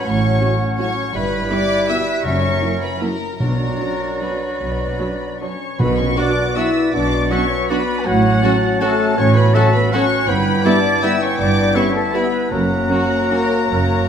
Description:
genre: classical, orchestral ballroom waltz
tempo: 143-177 BPM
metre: 3/4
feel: rubato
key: B minor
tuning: A4 = 436 Hz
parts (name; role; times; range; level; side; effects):
- dark studio violin section; melody; 0.0-14.1 s; F#5 to E6; -25 LUFS; left 3 dB; none
- bright clarinet; second line; 0.0-14.1 s; C#4 to F#4; -27 LUFS; left 2 dB; none
- clear oboe; second line; 0.0-14.1 s; F#4 to A5; -26 LUFS; right 2 dB; none
- flute section; second line; 0.0-14.1 s; F#4 to F#5; -25 LUFS; left 2 dB; none
- warm symphonic violin section; second line; 0.0-14.1 s; E4 to E5; -27 LUFS; left 3 dB; none
- mellow bassoon; accompaniment; 0.0-14.1 s; F#3 to C#4; -25 LUFS; right 1 dB; none
- dark symphonic double bass section; bass; 0.1-14.0 s; F#1 to B1; -22 LUFS; right 3 dB; none
- warm symphonic cello section; bass; 0.1-14.0 s; F#2 to B2; -23 LUFS; right 2 dB; none
- dark symphonic viola section; accompaniment; 0.4-13.4 s; F#3 to F#4; -26 LUFS; right 1 dB; none
- mellow French horn section; sustained chords; 0.4-14.1 s; F#3 to F#4; -24 LUFS; left 3 dB; none
- warm trombone section; sustained chords; 0.4-13.4 s; F#2 to C#4; -28 LUFS; right 3 dB; none
- timpani; percussion; 2.2-6.3 s; F#2 to B2; -24 LUFS; equal; none
- bright trumpet; stabs; 6.2-13.4 s; E4 to F#4; -28 LUFS; right 1 dB; none
room: wet scoring stage reverb, RT60 1.4 s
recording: none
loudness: -15 LUFS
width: side -8 dB against mid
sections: 0.0-5.8 A section; 5.8-14.1 A section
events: none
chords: 0.0 F#m/A; 1.1 Em/G; 2.2 F#7; 3.4 Bm; 8.1 F#m/A; 10.3 Em/G; 12.5 F#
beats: | 0.06 0.41 0.79 | 1.15 1.51 1.89 | 2.25 2.62 3.02 | 3.40 3.80 4.21 | 4.60 4.99 5.40 | 5.79 6.17 6.57 | 6.93 7.31 7.70 | 8.06 8.43 8.81 | 9.18 9.54 9.93 | 10.29 10.65 11.03 | 11.38 11.75 12.14 | 12.52 12.90 13.31 | 13.69 14.08

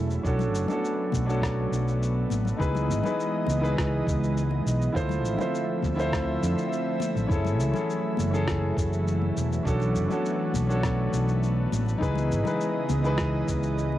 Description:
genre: sunset chillout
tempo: 102 BPM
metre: 4/4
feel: straight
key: unclear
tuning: A4 = 440 Hz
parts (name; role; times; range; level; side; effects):
- warm concert grand piano; accompaniment; 0.0-14.0 s; C#4 to C5; -29 LUFS; moving between left 4 dB and right 2 dB; auto-pan, low-pass filter, cassette tape, analog delay
- airy breathy pad; sustained chords; 0.0-14.0 s; C#3 to E5; -30 LUFS; equal; chorus, cassette tape
- mellow fretless electric bass; bass; 0.0-14.0 s; E1 to F2; -27 LUFS; equal; tube saturation, wide subtle chorus
- electronic shaker and rim click; drums; 0.1-13.9 s; none; -37 LUFS; equal; cassette tape
- electronic kick drum; drums; 0.2-13.6 s; none; -30 LUFS; equal; cassette tape
- congas; percussion; 0.4-14.0 s; none; -36 LUFS; left 8 dB; none
room: light reverb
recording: home recording on cassette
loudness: -24 LUFS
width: side -13 dB against mid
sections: 0.0-14.0 A section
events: none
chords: 0.2 Bm9; 2.6 C#m9; 5.0 Dm9; 7.3 F#m9; 9.7 Bm9; 12.0 C#m9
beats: | 0.24 0.83 1.42 2.01 | 2.60 3.19 3.77 4.36 | 4.95 5.54 6.13 6.72 | 7.30 7.89 8.48 9.07 | 9.66 10.24 10.83 11.42 | 12.01 12.60 13.19 13.78

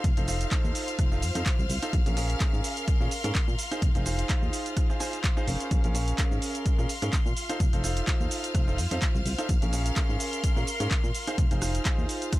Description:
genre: piano house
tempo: 127 BPM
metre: 4/4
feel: swing 55% on 16ths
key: Bb minor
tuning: A4 = 440 Hz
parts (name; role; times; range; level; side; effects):
- warm studio string section; sustained chords; 0.0-12.4 s; F5 to F6; -38 LUFS; left 1 dB; sidechain pumping
- clear baby grand piano; riff; 0.0-12.4 s; Db4 to Ab5; -34 LUFS; right 1 dB; sidechain pumping
- solid FM bass; bass; 0.0-12.1 s; F1 to Bb2; -30 LUFS; equal; sidechain pumping
- electronic kick drum; drums; 0.0-12.4 s; none; -26 LUFS; equal; none
- punchy analog drum machine; drums; 0.0-12.4 s; handclaps, hi-hat, rim click, shaker; -34 LUFS; right 1 dB; none
- warm chamber string section; texture; 0.0-12.4 s; F4 to C6; -38 LUFS; left 2 dB; sidechain pumping
room: little or no reverb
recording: none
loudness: -24 LUFS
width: side -17 dB against mid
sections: 0.0-12.4 A section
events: none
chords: 0.0 F7; 1.9 Bbm7; 3.6 Fm7; 5.7 Bbm7; 7.4 F7; 9.5 Bbm7; 11.1 Fm7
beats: | 0.04 0.52 0.99 1.46 | 1.93 2.40 2.88 3.35 | 3.82 4.29 4.77 5.24 | 5.71 6.18 6.66 7.13 | 7.60 8.07 8.55 9.02 | 9.49 9.96 10.44 10.91 | 11.38 11.85 12.33

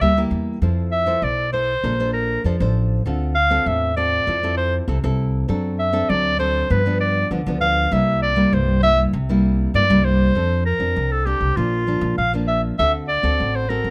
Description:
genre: samba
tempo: 99 BPM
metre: 4/4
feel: straight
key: F major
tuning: A4 = 439 Hz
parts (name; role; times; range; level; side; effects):
- bright clarinet; melody; 0.0-13.9 s; F4 to F5; -22 LUFS; equal; plate reverb
- nylon-string guitar; accompaniment; 0.0-13.9 s; G2 to C5; -25 LUFS; equal; none
- upright bass; bass; 0.0-13.9 s; A1 to G2; -24 LUFS; equal; none
room: light reverb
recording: close, detailed microphones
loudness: -20 LUFS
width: mono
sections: 0.0-10.4 A section; 10.4-13.9 B section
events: clarinet solo 0.0-10.4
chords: 0.0 C7 (rootless); 0.6 Fmaj7; 1.8 Bbmaj9; 3.1 Dm7; 4.3 Fmaj7; 5.5 D7/F#; 6.7 G7; 7.9 C7; 10.4 F6; 11.6 Bb; 12.8 D7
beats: 0.01 | 0.62 1.23 1.84 2.45 | 3.06 3.66 4.27 4.88 | 5.49 6.10 6.71 7.32 | 7.92 8.53 9.14 9.75 | 10.36 10.97 11.57 12.18 | 12.79 13.40

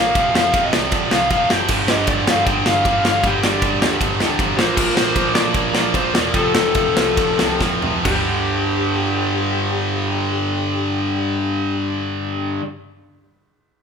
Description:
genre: punk rock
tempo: 133-156 BPM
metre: 4/4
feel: straight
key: G minor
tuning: A4 = 440 Hz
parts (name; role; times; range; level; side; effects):
- lead guitar through a small cranked amp; melody; 0.0-12.4 s; G4 to G5; -22 LUFS; left 2 dB; overdrive
- tight distorted guitar; riff; 0.0-12.6 s; F2 to Bb3; -25 LUFS; left 7 dB; distortion
- tight distorted guitar; riff; 0.0-12.7 s; F2 to Bb3; -22 LUFS; right 5 dB; distortion
- overdriven picked electric bass; bass; 0.0-12.6 s; E1 to Bb2; -28 LUFS; equal; none
- big rock drum kit; drums; 0.2-8.2 s; crash cymbal, kick drum, ride cymbal, snare drum, toms; -20 LUFS; equal; none
- crunchy overdriven guitar; riff; 1.7-12.6 s; F2 to Bb3; -26 LUFS; right 1 dB; none
room: moderate large studio reverb, RT60 1.3 s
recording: band playing live in one room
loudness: -16 LUFS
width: side -6 dB against mid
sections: 0.0-8.1 A section; 8.1-11.7 B section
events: slowing down 4.8-8.1; drum fill 7.6-8.1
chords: 0.2 F5; 1.7 G5; 4.6 Bb; 6.4 F; 8.1 G5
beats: | 0.15 0.54 0.93 1.31 | 1.70 2.08 2.47 2.85 | 3.24 3.62 4.01 4.39 | 4.78 5.17 5.56 5.95 | 6.35 6.76 7.18 7.61 | 8.06 8.51 8.96 9.41 | 9.87 10.32 10.77 11.22

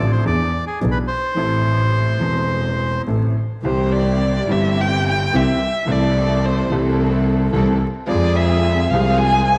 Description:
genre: tango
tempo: 108 BPM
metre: 4/4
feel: rubato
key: A harmonic minor, C major from 3.6 s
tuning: A4 = 440 Hz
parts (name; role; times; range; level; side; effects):
- bandoneon; melody; 0.0-3.0 s; G#4 to D5; -25 LUFS; equal; none
- clear upright piano; accompaniment; 0.0-9.6 s; E1 to A4; -24 LUFS; equal; none
- clear double bass; bass; 0.0-9.6 s; E1 to F2; -22 LUFS; equal; none
- warm studio string section; stabs; 3.6-9.6 s; C4 to A4; -29 LUFS; equal; none
- dark violin; second line; 3.7-9.6 s; A4 to Ab5; -23 LUFS; equal; none
room: moderate plate reverb, RT60 2.5 s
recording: vinyl crackle, lossy compression artefacts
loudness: -18 LUFS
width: mono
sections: 0.0-3.6 A section; 3.6-9.6 B section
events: violin solo 3.6-9.6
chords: 0.3 E7; 1.4 Am; 3.6 C; 5.9 Am/C; 8.1 Fm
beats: 0.26 0.81 | 1.37 1.93 2.50 3.07 | 3.64 4.21 4.77 5.33 | 5.88 6.44 6.99 7.55 | 8.10 8.65 9.20

